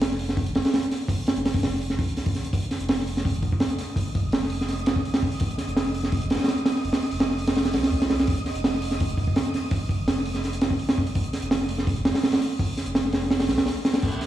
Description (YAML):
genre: drum and bass, jungle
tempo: 167 BPM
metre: 4/4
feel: straight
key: unclear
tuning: A4 = 440 Hz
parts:
  - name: saturated sub bass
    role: bass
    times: 0.0-14.1 s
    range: F1 to C2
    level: -30 LUFS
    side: equal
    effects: none
  - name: crunchy breakbeat drum kit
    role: drums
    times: 0.0-14.3 s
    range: crash cymbal, hi-hat, kick drum, snare drum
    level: -22 LUFS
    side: right 1 dB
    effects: none
  - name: wind-like tuned noise texture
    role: texture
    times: 3.1-14.0 s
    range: Eb5 to Eb6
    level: -38 LUFS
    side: right 2 dB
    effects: built-in reverb
room: moderate lush hall reverb, RT60 1.8 s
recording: played on a big sound system in a bare room, large studio reverb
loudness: -22 LUFS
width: side -12 dB against mid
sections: 0.0-14.0 A section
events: drop 0.0-14.0; kick drops out 13.3-14.0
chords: 0.0 F5